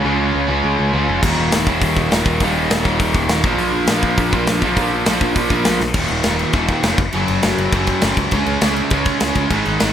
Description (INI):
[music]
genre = punk rock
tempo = 203 BPM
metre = 4/4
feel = straight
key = unclear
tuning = A4 = 444 Hz
[part]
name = distorted electric guitar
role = riff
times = 0.0-9.9 s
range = Eb2 to Db4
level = -24 LUFS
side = equal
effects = distortion
[part]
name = overdriven semi-hollow guitar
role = riff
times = 0.0-9.9 s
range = Eb2 to Ab4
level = -21 LUFS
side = right 4 dB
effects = none
[part]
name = tight distorted guitar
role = riff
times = 0.0-9.9 s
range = Eb2 to Db4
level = -21 LUFS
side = left 4 dB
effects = distortion
[part]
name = modern bright picked electric bass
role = bass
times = 0.0-9.9 s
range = Eb1 to Db2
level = -23 LUFS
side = equal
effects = none
[part]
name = big rock drum kit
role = drums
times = 1.2-9.9 s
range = crash cymbal, hi-hat, kick drum, snare drum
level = -19 LUFS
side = equal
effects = none
[sound]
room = light reverb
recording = none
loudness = -14 LUFS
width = side -9 dB against mid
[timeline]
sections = 0.0-6.0 A section; 6.0-9.9 B section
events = drum fill 5.8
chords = 0.0 Db; 1.2 Eb; 3.4 Bb; 6.0 Eb5; 7.0 Gb5; 8.3 Db5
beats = | 0.04 0.34 0.63 0.93 | 1.22 1.52 1.81 2.11 | 2.40 2.70 3.00 3.29 | 3.59 3.88 4.18 4.47 | 4.77 5.06 5.36 5.65 | 5.95 6.25 6.54 6.84 | 7.13 7.43 7.73 8.02 | 8.32 8.61 8.91 9.21 | 9.50 9.80